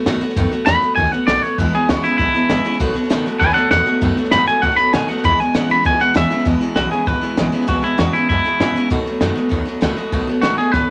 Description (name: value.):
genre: rockabilly.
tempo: 197 BPM.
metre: 4/4.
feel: straight.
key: E major.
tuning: A4 = 443 Hz.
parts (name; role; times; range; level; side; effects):
picked steel-string acoustic guitar; accompaniment; 0.0-10.9 s; E2 to F#4; -23 LUFS; equal; none.
upright bass; bass; 0.1-10.9 s; G#1 to B2; -26 LUFS; equal; none.
compact cocktail drum kit; drums; 0.1-10.8 s; hi-hat, kick drum, snare drum; -24 LUFS; equal; none.
twangy electric guitar; melody; 0.7-10.9 s; E4 to B5; -19 LUFS; equal; none.
electric guitar through a small old amp; riff; 1.6-10.9 s; E2 to G#3; -28 LUFS; equal; none.
room: light reverb.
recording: none.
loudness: -17 LUFS.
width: mono.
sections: 0.0-6.5 A section; 6.5-10.9 B section.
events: clean electric guitar solo 0.0-6.5; drum fill 10.7.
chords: 0.0 B7; 1.6 E; 2.8 B7; 5.2 E; 8.9 B7.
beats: 0.07 | 0.37 0.67 0.98 1.28 | 1.58 1.89 2.19 2.50 | 2.80 3.11 3.41 3.72 | 4.02 4.33 4.63 4.93 | 5.24 5.54 5.85 6.16 | 6.46 6.77 7.07 7.38 | 7.68 7.99 8.29 8.60 | 8.90 9.21 9.52 9.82 | 10.13 10.43 10.74.